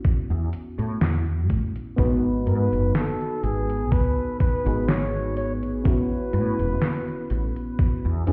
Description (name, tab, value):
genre	vaporwave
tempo	62 BPM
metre	4/4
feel	swing 54% on 16ths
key	A lydian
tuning	A4 = 440 Hz
part	mellow FM electric piano	accompaniment	0.0-8.3 s	B3 to B4	-31 LUFS	equal	subtle chorus
part	detuned 8-bit digital drum machine	drums	0.0-8.3 s	hi-hat, snare drum	-29 LUFS	equal	vintage 12-bit sampler grit, small room ambience
part	electronic kick drum	drums	0.0-8.0 s	none	-24 LUFS	equal	vintage 12-bit sampler grit, small room ambience
part	woody fretless electric bass	bass	0.3-8.3 s	E1 to A2	-27 LUFS	equal	ensemble chorus
part	mellow flugelhorn	melody	2.5-7.7 s	G#4 to C#5	-32 LUFS	equal	vintage 12-bit sampler grit, tape echo
room	light reverb, digital ambience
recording	heard muffled through a wall, stone room reverb, EQ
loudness	-24 LUFS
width	mono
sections	0.0-8.3 A section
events	none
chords	0.0 Aadd9; 2.0 G#m7; 5.9 Aadd9